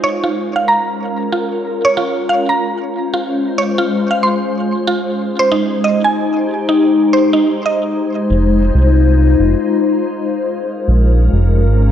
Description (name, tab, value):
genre	IDM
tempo	93 BPM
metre	4/4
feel	swing 62% on 16ths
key	F minor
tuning	A4 = 441 Hz
part	glassy FM pad	sustained chords	0.0-11.9 s	Ab3 to C5	-16 LUFS	left 2 dB	ensemble chorus, built-in reverb, phaser
part	mallet-like synth pluck	arpeggios	0.0-7.8 s	Eb4 to C6	-16 LUFS	right 2 dB	analog chorus, tape echo
part	round analog bass	bass	8.3-11.9 s	F1 to C2	-11 LUFS	equal	none
room	wet echo chamber reverb, RT60 2.0 s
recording	worn, warbling old tape, cassette tape, warbly pitch drift, nothing above 10.8 kHz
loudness	-12 LUFS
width	side -10 dB against mid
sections	0.0-7.8 A section; 7.8-11.9 B section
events	none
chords	0.0 Bbm7; 2.6 Dbmaj7; 5.2 Abmaj7; 7.8 Fm7; 10.4 Bbm7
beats	| 0.04 0.68 1.33 1.97 | 2.62 3.26 3.91 4.55 | 5.20 5.84 6.49 7.13 | 7.78 8.42 9.07 9.71 | 10.36 11.00 11.65